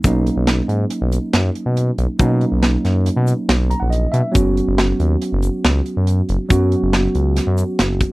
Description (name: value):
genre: progressive instrumental, band music in an uneven meter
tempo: 139 BPM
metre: 5/4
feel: straight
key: unclear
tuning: A4 = 443 Hz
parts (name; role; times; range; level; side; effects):
- tine electric piano; accompaniment; 0.0-8.1 s; F#3 to A#5; -20 LUFS; right 1 dB; none
- smooth synth bass; bass; 0.0-8.0 s; F#1 to B2; -17 LUFS; equal; none
- tight metal drum kit; drums; 0.0-8.1 s; hi-hat, kick drum, snare drum; -18 LUFS; equal; none
- egg shaker; percussion; 0.0-7.9 s; none; -37 LUFS; left 11 dB; none
room: light reverb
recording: dry, close 1970s-style studio recording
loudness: -15 LUFS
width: side -20 dB against mid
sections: 0.0-8.1 A section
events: tine electric piano fill 3.5-4.4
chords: 0.0 Bmaj7; 4.4 F#sus4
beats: | 0.04 0.48 0.91 1.34 1.77 | 2.20 2.63 3.06 3.49 3.92 | 4.35 4.78 5.21 5.64 6.07 | 6.50 6.93 7.36 7.79